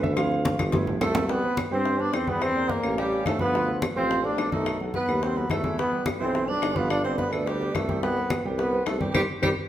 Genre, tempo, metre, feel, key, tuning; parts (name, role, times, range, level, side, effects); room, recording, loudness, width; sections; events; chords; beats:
Afro-Cuban jazz; 214 BPM; 4/4; straight; C major; A4 = 440 Hz
warm concert grand piano; accompaniment; 0.0-9.5 s; Eb3 to G5; -31 LUFS; right 3 dB
warm tuba; bass; 0.0-9.5 s; G1 to G2; -30 LUFS; equal
congas; percussion; 0.0-9.5 s; -31 LUFS; left 1 dB
claves; percussion; 0.2-9.5 s; -37 LUFS; left 2 dB
cowbell and bongos; percussion; 0.2-9.5 s; -34 LUFS; left 4 dB
clear trombone; melody; 1.0-9.5 s; G3 to D4; -28 LUFS; left 1 dB
breathy tenor saxophone; second line; 1.0-9.5 s; G4 to D5; -31 LUFS; right 3 dB
wet large studio reverb, RT60 1.3 s; band playing live in one room; -23 LUFS; side -12 dB against mid
0.0-1.3 A section; 1.3-9.7 B section
grand piano solo 0.0-1.3; drum fill 0.6-1.3; band accent 9.1-9.7
0.2 Dm7; 0.7 G13; 1.3 Cmaj7; 2.4 Em7b5; 3.0 Aaug7; 3.5 Dm7; 4.7 B7; 5.8 Em7; 6.9 G7; 8.0 C5
| 0.17 0.45 0.73 1.01 | 1.29 1.57 1.85 2.13 | 2.42 2.70 2.98 3.26 | 3.54 3.82 4.10 4.38 | 4.66 4.94 5.22 5.50 | 5.78 6.06 6.34 6.62 | 6.91 7.18 7.46 7.75 | 8.03 8.30 8.59 8.87 | 9.14 9.43